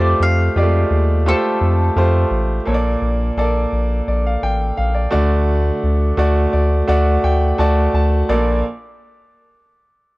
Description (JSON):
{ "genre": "piano-driven pop", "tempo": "85 BPM", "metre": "4/4", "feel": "straight", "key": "Bb major", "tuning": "A4 = 440 Hz", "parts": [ { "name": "mandolin", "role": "melody", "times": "0.0-2.3 s", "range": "A4 to F5", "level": "-23 LUFS", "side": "left 1 dB", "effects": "cassette tape, plate reverb, tape echo" }, { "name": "clear grand piano", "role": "accompaniment", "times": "0.0-8.6 s", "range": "Bb1 to A5", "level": "-18 LUFS", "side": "right 1 dB", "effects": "none" }, { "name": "round analog bass", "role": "bass", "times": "0.0-8.6 s", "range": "A1 to F2", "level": "-16 LUFS", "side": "equal", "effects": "none" } ], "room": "light reverb", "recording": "home recording on cassette", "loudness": "-14 LUFS", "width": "side -20 dB against mid", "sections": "0.0-2.7 A section; 2.7-8.3 B section; 8.3-10.2 C section", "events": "grand piano fill 6.2-8.3", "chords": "0.0 Fadd9; 2.7 Bbmaj7; 5.1 D; 8.3 Bbmaj7" }